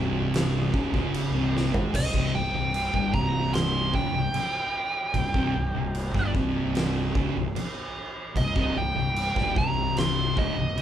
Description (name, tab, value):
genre	stoner and doom metal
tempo	75 BPM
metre	4/4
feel	straight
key	C minor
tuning	A4 = 442 Hz
part	thick fuzz guitar	riff	0.0-10.8 s	C2 to Ab3	-30 LUFS	left 6 dB	distortion
part	thick fuzz guitar	riff	0.0-10.8 s	C2 to Ab3	-30 LUFS	right 6 dB	distortion
part	fuzz fingered electric bass	bass	0.0-10.8 s	C1 to Ab1	-32 LUFS	equal	overdrive
part	oversized low-tuned drum kit	drums	0.3-10.8 s	crash cymbal, kick drum, snare drum, toms	-29 LUFS	equal	none
part	fuzz lead guitar	melody	2.0-10.8 s	Eb5 to C6	-28 LUFS	right 2 dB	wah, distortion
room	light reverb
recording	band playing live in one room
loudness	-23 LUFS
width	side -10 dB against mid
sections	0.0-1.9 A section; 1.9-10.8 B section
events	drum fill 1.5-1.9; lead electric guitar solo 1.9-10.8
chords	0.0 C5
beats	0.34 1.14 | 1.94 2.74 3.55 4.35 | 5.15 5.95 6.76 7.56 | 8.36 9.16 9.97 10.77